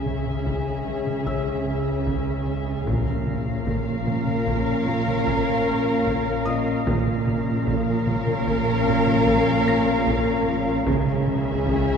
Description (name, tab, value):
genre	cinematic, suspense film score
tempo	75 BPM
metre	5/4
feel	straight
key	Bb minor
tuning	A4 = 435 Hz
part	muted chamber violin section	melody	0.0-12.0 s	Fb5 to F5	-32 LUFS	left 3 dB	none
part	muted symphonic violin section	second line	0.0-12.0 s	Ab4 to Bb4	-27 LUFS	left 1 dB	none
part	muted symphonic viola section	accompaniment	0.0-12.0 s	Db4	-29 LUFS	left 2 dB	none
part	muted symphonic cello section	bass	0.0-12.0 s	Bb2 to Db3	-28 LUFS	right 1 dB	none
part	muted symphonic double bass section	bass	0.0-12.0 s	Bb1 to Db2	-29 LUFS	right 2 dB	none
part	felt-muted upright piano	texture	0.0-12.0 s	Db5 to Bb6	-37 LUFS	left 2 dB	none
part	muted studio cello section	riff	0.1-11.9 s	Bb2 to Db4	-30 LUFS	right 1 dB	none
part	solo taiko drums	drums	0.1-12.0 s	none	-30 LUFS	equal	none
part	timpani	percussion	2.9-4.0 s	Bb2	-33 LUFS	left 2 dB	none
part	muted symphonic violin section	texture	2.9-10.4 s	F6 to C7	-40 LUFS	left 2 dB	none
room	wet cathedral reverb, RT60 5.2 s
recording	heard from further back in the room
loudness	-20 LUFS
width	side -6 dB against mid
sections	0.0-12.0 A section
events	none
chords	0.0 Dbm; 2.9 Bbm; 10.9 Dbm